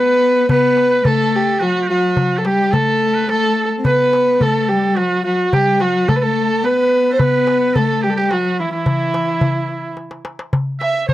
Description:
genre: Arabic maqam ensemble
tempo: 108 BPM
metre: 3/4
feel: straight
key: unclear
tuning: A4 = 443 Hz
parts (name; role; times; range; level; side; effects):
- dark violin; melody; 0.0-11.1 s; E4 to E5; -16 LUFS; right 1 dB; none
- bright cello; second line; 0.0-9.9 s; E3 to C4; -20 LUFS; left 4 dB; none
- trumpet with metal mute; second line; 0.0-11.1 s; E4 to E5; -23 LUFS; right 4 dB; none
- darbuka; percussion; 0.5-11.1 s; none; -20 LUFS; left 1 dB; none
room: little or no reverb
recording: dry, close 1970s-style studio recording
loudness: -14 LUFS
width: side -14 dB against mid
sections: 0.0-10.5 A section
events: drum fill 10.0-10.5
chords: none

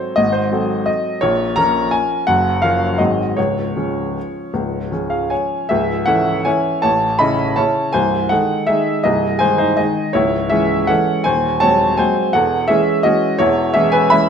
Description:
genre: classical, piano waltz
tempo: 150-179 BPM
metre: 3/4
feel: rubato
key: Db major, C# minor from 5.7 s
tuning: A4 = 440 Hz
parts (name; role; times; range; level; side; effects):
- warm upright piano; solo; 0.0-14.3 s; B#0 to B5; -14 LUFS; equal; none
room: moderate recital hall reverb, RT60 1.5 s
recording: none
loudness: -14 LUFS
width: side -7 dB against mid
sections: 0.0-5.7 A section; 5.7-14.3 B section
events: none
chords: 0.0 Ab7b9; 1.2 Bbm; 2.3 Gbmaj7; 3.0 Ab7; 3.4 Db; 5.7 C#m; 6.8 A; 7.9 G#/B#; 10.2 C#m; 11.3 G#7/D#; 12.3 C#m/E

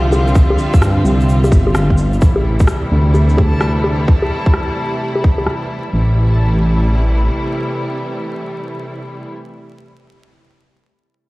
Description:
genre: future garage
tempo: 129 BPM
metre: 4/4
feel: swing 65% on 16ths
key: A minor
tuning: A4 = 440 Hz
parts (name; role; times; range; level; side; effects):
- rich studio string section; sustained chords; 0.0-9.3 s; C3 to F4; -21 LUFS; equal; sidechain pumping
- dark detuned saw bass; bass; 0.0-7.3 s; G1 to G2; -13 LUFS; equal; none
- backwards swelling texture; texture; 0.0-5.9 s; E5 to A5; -31 LUFS; equal; built-in reverb
- electronic bongos, cabasa, shaker and rim click; drums; 0.1-5.6 s; none; -22 LUFS; left 1 dB; low-pass filter on perc, studio reverb, low-pass filter on snare
- electronic kick drum; drums; 0.4-5.4 s; none; -11 LUFS; equal; studio reverb
room: light reverb, digital ambience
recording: played on a big sound system in a bare room, stone room reverb, vinyl crackle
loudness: -12 LUFS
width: side -21 dB against mid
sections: 0.0-2.2 A section; 2.2-5.9 B section; 5.9-9.7 C section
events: filter sweep on drum 2.2-5.9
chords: 0.0 G7sus4; 2.2 Am7

